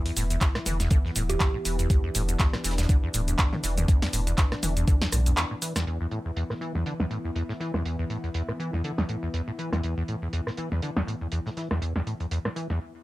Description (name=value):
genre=acid house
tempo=121 BPM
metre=4/4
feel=swing 56% on 16ths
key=unclear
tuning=A4 = 440 Hz
part: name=warm analog pad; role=sustained chords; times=0.0-13.0 s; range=E3 to E4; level=-36 LUFS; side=left 2 dB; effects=chorus, sidechain pumping
part: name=acid bass, saw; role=riff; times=0.0-12.8 s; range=E2 to E3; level=-30 LUFS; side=equal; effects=overdrive, wide subtle chorus, sidechain pumping
part: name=punchy analog drum machine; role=drums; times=0.1-12.8 s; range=handclaps, hi-hat, rim click, shaker, snare drum, toms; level=-29 LUFS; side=equal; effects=low-pass filter on hats, low-pass filter on snare, low-pass filter on perc, low-pass filter on toms
part: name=warm sub bass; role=bass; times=0.2-5.3 s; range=D1 to B1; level=-27 LUFS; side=equal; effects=sidechain pumping
part: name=warm soul drum kit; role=drums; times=0.2-12.7 s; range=hi-hat, snare drum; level=-42 LUFS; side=right 3 dB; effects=sidechain pumping on hats, high-pass filter on hats, low-pass filter on hats, high-pass filter on snare, low-pass filter on snare, high-pass filter on room, low-pass filter on room
part: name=electronic kick drum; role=drums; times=0.4-5.0 s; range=none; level=-22 LUFS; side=equal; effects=overdrive
part: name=kalimba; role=melody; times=1.3-1.8 s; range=G4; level=-36 LUFS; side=right 8 dB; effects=tape echo
room=little or no reverb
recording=none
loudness=-24 LUFS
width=side -18 dB against mid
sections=0.0-5.9 A section; 5.9-13.0 B section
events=filter sweep on acid bass 0.0-5.9; break 5.4-5.9, 12.8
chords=0.0 E5